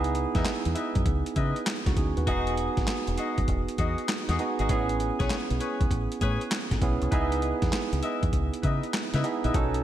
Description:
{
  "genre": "R&B, new jack swing",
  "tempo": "99 BPM",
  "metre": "4/4",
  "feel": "swing 66% on 16ths",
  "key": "unclear",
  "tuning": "A4 = 438 Hz",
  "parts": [
    { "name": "barky tine electric piano", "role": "accompaniment", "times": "0.0-9.8 s", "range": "B3 to B4", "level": "-30 LUFS", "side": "right 4 dB", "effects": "none" },
    { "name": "deep dub fingered electric bass", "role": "bass", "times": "0.0-9.8 s", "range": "E1 to C#3", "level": "-29 LUFS", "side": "equal", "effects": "none" },
    { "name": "boom bap sampler-style drum kit", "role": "drums", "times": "0.0-9.8 s", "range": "handclaps, hi-hat, kick drum, snare drum", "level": "-29 LUFS", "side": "equal", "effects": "overdrive, gated reverb" },
    { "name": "mellow horn section", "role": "stabs", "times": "0.3-9.6 s", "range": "C#4 to D#5", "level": "-34 LUFS", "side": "left 4 dB", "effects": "digital delay" }
  ],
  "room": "moderate lush hall reverb, RT60 1.7 s, digital ambience",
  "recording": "bright 1980s-style digital production",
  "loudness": "-25 LUFS",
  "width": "side -12 dB against mid",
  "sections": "0.0-9.8 A section",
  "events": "none",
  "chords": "0.0 C#m9; 2.3 Emaj9; 4.7 Amaj9; 7.1 C#m9"
}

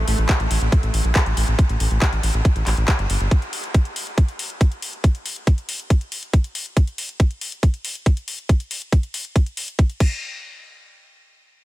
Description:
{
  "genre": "psychedelic trance",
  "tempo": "139 BPM",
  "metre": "4/4",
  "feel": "straight",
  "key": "unclear",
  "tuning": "A4 = 440 Hz",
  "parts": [
    { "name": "round analog bass", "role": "bass", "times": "0.0-3.3 s", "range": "G1 to Bb1", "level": "-20 LUFS", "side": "equal", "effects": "none" },
    { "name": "garage drum kit", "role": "drums", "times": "0.1-10.1 s", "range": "crash cymbal, handclaps, hi-hat", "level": "-27 LUFS", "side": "left 1 dB", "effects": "none" },
    { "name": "electronic kick drum", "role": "drums", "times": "0.3-10.1 s", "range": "none", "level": "-15 LUFS", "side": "equal", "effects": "none" }
  ],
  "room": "light reverb",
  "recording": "none",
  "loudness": "-18 LUFS",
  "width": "side -17 dB against mid",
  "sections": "0.0-10.2 A section; 10.2-11.6 B section",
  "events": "none",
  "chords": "none"
}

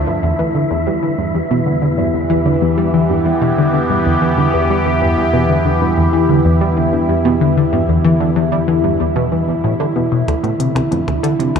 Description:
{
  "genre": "ambient, sequencer-driven space music",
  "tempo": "94 BPM",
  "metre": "4/4",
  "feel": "straight",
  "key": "unclear",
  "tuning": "A4 = 440 Hz",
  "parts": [
    { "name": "sweeping resonant pad", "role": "sustained chords", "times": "0.0-11.6 s", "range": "D3 to G4", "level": "-17 LUFS", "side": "equal", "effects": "chorus, phaser" },
    { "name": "tight sequenced synth", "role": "riff", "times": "0.0-11.6 s", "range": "D2 to G3", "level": "-15 LUFS", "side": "left 1 dB", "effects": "chorus, phaser, tape echo" },
    { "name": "analog drone", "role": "bass", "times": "1.5-10.2 s", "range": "E2", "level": "-23 LUFS", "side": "equal", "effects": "chorus" },
    { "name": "wind-like tuned noise texture", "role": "texture", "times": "0.0-10.3 s", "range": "E4 to E5", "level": "-27 LUFS", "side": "right 1 dB", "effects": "built-in reverb" },
    { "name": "electronic hi-hat and percussion blips", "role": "percussion", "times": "10.3-11.6 s", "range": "none", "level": "-28 LUFS", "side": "left 3 dB", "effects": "tape echo" }
  ],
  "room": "wet cathedral reverb, RT60 5.5 s",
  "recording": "in a vast, echoing space",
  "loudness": "-13 LUFS",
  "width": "side -6 dB against mid",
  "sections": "0.0-10.3 A section; 10.3-11.6 B section",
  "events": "none",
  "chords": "0.1 Em7; 10.3 Dm"
}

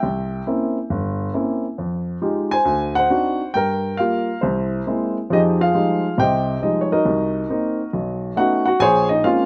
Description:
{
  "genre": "solo jazz",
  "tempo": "137 BPM",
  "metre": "4/4",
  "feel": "swing 66% on 8ths",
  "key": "F minor",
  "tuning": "A4 = 440 Hz",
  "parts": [
    { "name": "warm baby grand piano", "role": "solo", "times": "0.0-9.5 s", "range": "G1 to Ab5", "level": "-20 LUFS", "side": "equal", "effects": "slapback echo" }
  ],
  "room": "light reverb",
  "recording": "recorded outdoors, with no room sound",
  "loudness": "-20 LUFS",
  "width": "mono",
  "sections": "0.0-5.3 A section; 5.3-9.5 B section",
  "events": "none",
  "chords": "0.0 C7b9; 1.8 Fm9; 2.7 D7b9; 3.5 Gm7; 4.4 C7b13; 5.3 Fm9; 7.0 Cm7b5; 7.9 B9; 8.8 Bbm9"
}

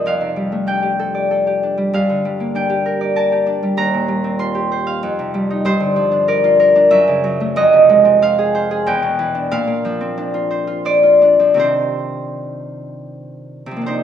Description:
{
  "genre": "classical, solo harp piece",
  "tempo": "77-100 BPM",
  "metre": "3/4",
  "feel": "rubato",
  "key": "C dorian",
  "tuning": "A4 = 440 Hz",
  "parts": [
    { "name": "Celtic harp", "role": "solo", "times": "0.0-14.0 s", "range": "Eb2 to C6", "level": "-14 LUFS", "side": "equal", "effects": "none" }
  ],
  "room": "wet recital hall reverb, RT60 1.6 s",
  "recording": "none",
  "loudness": "-13 LUFS",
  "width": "side -9 dB against mid",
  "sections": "0.0-13.9 A section",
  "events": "none",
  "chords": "0.1 F69; 1.9 Gm7; 3.8 Eb69; 5.0 Fsus2; 5.6 Gm7; 6.9 F#m7; 7.6 Fm7; 8.9 Em7; 9.5 Bbadd9; 11.6 Cmadd9"
}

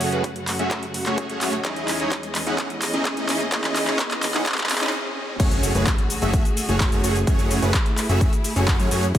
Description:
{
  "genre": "EDM, festival progressive house",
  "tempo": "128 BPM",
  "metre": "4/4",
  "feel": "straight",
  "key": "unclear",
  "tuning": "A4 = 438 Hz",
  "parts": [
    { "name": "warm studio string section", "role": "sustained chords", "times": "0.0-9.2 s", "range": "E2 to F#5", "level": "-29 LUFS", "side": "equal", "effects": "sidechain pumping" },
    { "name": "supersaw chords", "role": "riff", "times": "0.0-9.2 s", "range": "A3 to F#5", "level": "-25 LUFS", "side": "right 1 dB", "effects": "lush chorus, sidechain pumping, low-pass filter, tape echo" },
    { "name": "big-room dance drum kit", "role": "drums", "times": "0.0-9.2 s", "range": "crash cymbal, handclaps, hi-hat, shaker", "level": "-26 LUFS", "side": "equal", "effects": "overdrive" },
    { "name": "riser and impact", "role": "sound effects", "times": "0.8-7.3 s", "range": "none", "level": "-35 LUFS", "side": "equal", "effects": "none" },
    { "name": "electronic kick drum", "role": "drums", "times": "0.2-9.2 s", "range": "none", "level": "-21 LUFS", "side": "equal", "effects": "overdrive, high-pass filter on kick" },
    { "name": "fat analog bass", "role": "bass", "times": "5.4-9.2 s", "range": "E1 to F#2", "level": "-23 LUFS", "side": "equal", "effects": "sidechain pumping" }
  ],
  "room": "light reverb, digital ambience",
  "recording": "high-pass filter",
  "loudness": "-20 LUFS",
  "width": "side -11 dB against mid",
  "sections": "0.0-5.4 A section; 5.4-9.2 B section",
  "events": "build-up 0.0-5.4; drum fill 0.0-4.9; riser 0.8-5.4; break 4.9-5.4; drop 5.4-9.2; impact 5.4-7.3",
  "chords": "0.0 F#madd9; 1.6 C#madd9/E; 5.4 F#madd9"
}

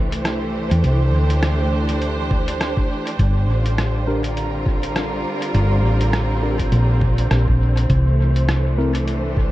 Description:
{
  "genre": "ambient dub",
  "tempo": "102 BPM",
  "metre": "4/4",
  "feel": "swing 57% on 16ths",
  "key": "G dorian",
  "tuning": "A4 = 441 Hz",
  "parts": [
    { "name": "clear symphonic string section", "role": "sustained chords", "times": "0.0-9.5 s", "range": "D3 to C5", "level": "-24 LUFS", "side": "right 1 dB", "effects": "vintage 12-bit sampler grit" },
    { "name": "hollow-body short-scale fingered electric bass", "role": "bass", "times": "0.0-9.5 s", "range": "G1 to E2", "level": "-18 LUFS", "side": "equal", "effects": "tube saturation" },
    { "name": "wind-like tuned noise texture", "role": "texture", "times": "0.0-9.5 s", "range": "C5", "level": "-32 LUFS", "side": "equal", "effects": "built-in reverb" },
    { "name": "lo-fi sampler-style drum kit", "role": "drums", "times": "0.1-9.2 s", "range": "hi-hat, rim click", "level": "-27 LUFS", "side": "equal", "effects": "small room ambience, dub echo" },
    { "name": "electronic kick drum", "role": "drums", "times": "2.3-9.5 s", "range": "none", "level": "-20 LUFS", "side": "equal", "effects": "small room ambience" },
    { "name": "tine electric piano", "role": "stabs", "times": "4.1-8.9 s", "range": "C4 to Bb4", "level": "-29 LUFS", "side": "left 2 dB", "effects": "none" }
  ],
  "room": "digital ambience",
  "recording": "dark, warm production",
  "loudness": "-16 LUFS",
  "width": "side -16 dB against mid",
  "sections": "0.0-9.5 A section",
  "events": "none",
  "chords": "0.0 C; 3.2 Gm; 7.9 C"
}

